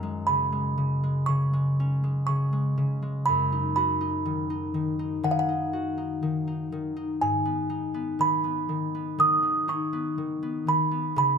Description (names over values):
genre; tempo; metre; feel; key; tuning
children's music, lullaby; 61 BPM; 4/4; straight; unclear; A4 = 440 Hz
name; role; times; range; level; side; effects
music box; melody; 0.0-11.4 s; E#5 to D#6; -26 LUFS; right 4 dB; none
concert harp; accompaniment; 0.0-11.4 s; F#2 to F#4; -27 LUFS; left 2 dB; none
room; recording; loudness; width
moderate recital hall reverb, RT60 1.5 s; close, detailed microphones; -24 LUFS; side -6 dB against mid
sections
0.0-11.4 A section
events
none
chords
0.0 F#sus2; 3.3 B/F#; 7.2 G#m